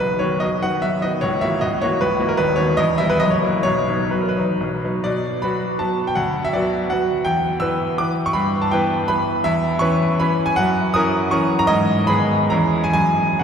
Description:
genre	classical, romantic triple-time dance for piano with dotted rhythms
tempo	120-176 BPM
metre	3/4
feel	rubato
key	B major, B minor from 5.0 s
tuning	A4 = 439 Hz
part	bright grand piano	solo	0.0-13.4 s	B0 to E6	-17 LUFS	equal	none
room	wet cathedral reverb, RT60 5.7 s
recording	heard from further back in the room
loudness	-17 LUFS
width	side -7 dB against mid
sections	0.0-5.0 A section; 5.0-13.4 B section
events	none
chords	0.0 B; 1.2 F#7/C#; 2.4 B/D#; 2.8 Em; 3.2 F#7; 3.6 B; 5.0 Bm; 6.2 Bm/D; 7.3 Em; 8.3 Em/G; 9.4 C#m7/E; 10.6 F#7; 11.7 G#m; 12.5 C#m/E

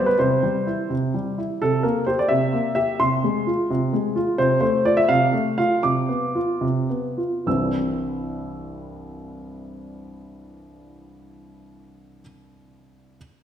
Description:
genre	classical-period piano sonatina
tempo	68-88 BPM (dotted quarters)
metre	6/8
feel	rubato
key	C major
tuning	A4 = 440 Hz
part	warm grand piano	solo	0.0-13.2 s	C2 to E6	-20 LUFS	equal	none
room	wet recital hall reverb, RT60 1.6 s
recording	none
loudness	-19 LUFS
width	side -9 dB against mid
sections	0.0-1.6 A section; 1.6-7.5 B section; 7.5-10.9 C section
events	slowing down 3.7-7.5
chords	0.2 C; 1.6 C7; 3.0 Fm/C; 4.4 F/C; 5.8 Csus24; 7.5 C

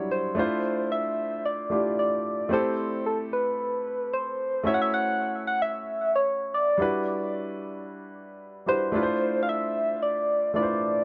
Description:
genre	amapiano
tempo	112 BPM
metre	4/4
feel	swing 55% on 16ths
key	unclear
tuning	A4 = 440 Hz
part	clear baby grand piano	accompaniment	0.0-11.0 s	F#3 to C#5	-31 LUFS	equal	none
part	soft struck synth lead	melody	0.1-11.0 s	A4 to F#5	-28 LUFS	equal	chorus, phaser, analog delay
room	wet studio ambience, RT60 0.5 s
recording	dark, warm production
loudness	-27 LUFS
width	mono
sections	0.0-11.0 A section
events	none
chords	0.4 Dm7; 2.5 Am7; 4.7 F#m7; 6.8 Em7; 8.9 Dm7

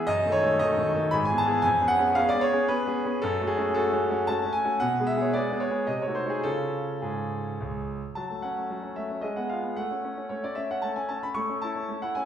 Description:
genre	classical-period piano sonatina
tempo	113 BPM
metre	3/4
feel	rubato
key	F# minor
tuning	A4 = 439 Hz
part	bright concert grand piano	solo	0.0-12.3 s	C#2 to C#6	-24 LUFS	equal	none
room	wet recital hall reverb, RT60 1.4 s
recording	heard from further back in the room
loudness	-24 LUFS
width	side -9 dB against mid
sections	0.0-8.2 A section; 8.2-12.3 B section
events	none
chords	0.1 D#dim/F#; 1.1 E/G#; 1.7 C#7/E#; 3.2 F#m; 4.8 Bm69; 5.9 Cdim7; 6.5 C#; 8.2 F#m; 9.2 Fdim/Ab; 9.8 F#m/A; 11.4 A

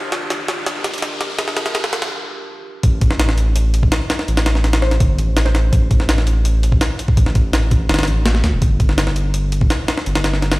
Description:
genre	drum and bass, jungle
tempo	166 BPM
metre	4/4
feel	straight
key	unclear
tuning	A4 = 440 Hz
part	warbly tape-like pad	sustained chords	0.0-2.1 s	D4 to Bb4	-31 LUFS	equal	chorus, built-in reverb
part	saturated sub bass	bass	0.0-10.6 s	E1 to D2	-16 LUFS	equal	high-pass filter
part	riser	sound effects	0.0-2.1 s	none	-27 LUFS	equal	none
part	jungle sampler-style drum kit	drums	0.1-10.6 s	hi-hat, kick drum, snare drum	-17 LUFS	equal	high-pass filter on snare, high-pass filter on hats, high-pass filter on kick
part	mallet-like synth pluck	melody	4.8-6.0 s	C5	-29 LUFS	left 1 dB	chorus, phaser, dub echo
room	light reverb, digital ambience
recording	played on a big sound system in a bare room, large studio reverb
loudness	-14 LUFS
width	side -21 dB against mid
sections	0.0-2.8 A section; 2.8-10.6 B section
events	build-up 0.0-2.8; drum fill 0.0-2.1; riser 0.0-2.1; break 2.1-2.8; drop 2.8-10.6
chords	0.0 Gm7; 2.8 N.C.

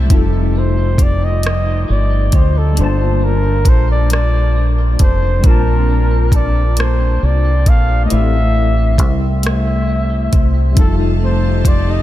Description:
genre	slow six-eight R&B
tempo	45 BPM (dotted quarters)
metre	6/8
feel	straight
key	unclear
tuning	A4 = 440 Hz
part	electric guitar at the edge of break-up	second line	0.0-12.0 s	A2 to C5	-25 LUFS	right 1 dB	lush chorus
part	barky tine electric piano	accompaniment	0.0-12.0 s	G3 to A5	-22 LUFS	left 5 dB	overdrive, ensemble chorus
part	warm studio string section	sustained chords	0.0-0.1, 10.8-12.0 s	Eb4 to A5	-33 LUFS	left 1 dB	none
part	deep dub fingered electric bass	bass	0.0-12.0 s	F1 to D2	-14 LUFS	equal	none
part	mellow flugelhorn	melody	0.1-12.0 s	A4 to F5	-21 LUFS	equal	none
part	smooth R&B drum kit	drums	0.1-11.9 s	hi-hat, kick drum, rim click	-14 LUFS	equal	none
room	light reverb, small room ambience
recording	none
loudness	-12 LUFS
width	side -14 dB against mid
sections	0.1-12.0 A section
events	none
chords	0.1 F9; 2.8 Gm9; 5.4 Bbmaj13; 8.1 Am7; 10.8 F9

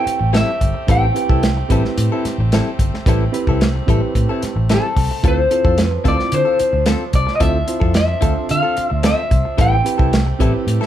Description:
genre	straight-eighth soul blues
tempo	110 BPM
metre	4/4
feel	straight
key	A minor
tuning	A4 = 439 Hz
part	electric guitar through a small old amp	melody	0.0-10.9 s	A4 to G5	-19 LUFS	left 1 dB	none
part	reed electric piano	accompaniment	0.0-10.9 s	C4 to C5	-24 LUFS	right 4 dB	overdrive
part	warm horn section	sustained chords	0.0-10.9 s	F3 to G4	-31 LUFS	right 3 dB	none
part	direct-recorded clean electric guitar	stabs	0.0-10.9 s	G3 to A4	-25 LUFS	left 6 dB	none
part	vintage muted fingered electric bass	bass	0.1-10.8 s	G1 to D3	-19 LUFS	right 1 dB	none
part	warm soul drum kit	drums	0.1-10.9 s	hi-hat, kick drum, snare drum	-18 LUFS	equal	none
room	light reverb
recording	band playing live in one room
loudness	-14 LUFS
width	side -11 dB against mid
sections	0.0-10.9 A section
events	none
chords	0.0 Am7; 5.2 Dm7; 9.6 Am7

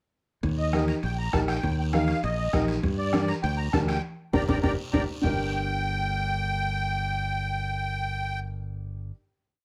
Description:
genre	latin, cumbia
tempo	200 BPM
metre	4/4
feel	straight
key	G minor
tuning	A4 = 439 Hz
part	modern bright fingered electric bass	bass	0.4-9.1 s	G1 to G2	-32 LUFS	equal	none
part	bombo	percussion	0.4-5.3 s	none	-33 LUFS	equal	none
part	congas	percussion	0.4-5.3 s	none	-36 LUFS	equal	none
part	guiro	percussion	0.4-5.3 s	none	-45 LUFS	equal	none
part	timbales	percussion	0.4-5.3 s	none	-45 LUFS	equal	none
part	musette accordion	melody	0.6-8.4 s	D5 to Bb5	-33 LUFS	equal	plate reverb
part	clear upright piano	accompaniment	0.7-9.1 s	D4 to Bb4	-31 LUFS	equal	none
room	light reverb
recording	none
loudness	-27 LUFS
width	mono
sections	0.4-5.2 A section; 5.2-7.6 final chord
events	band accent 4.0-5.2; drum fill 4.3-5.2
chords	0.4 Eb; 2.8 Gm

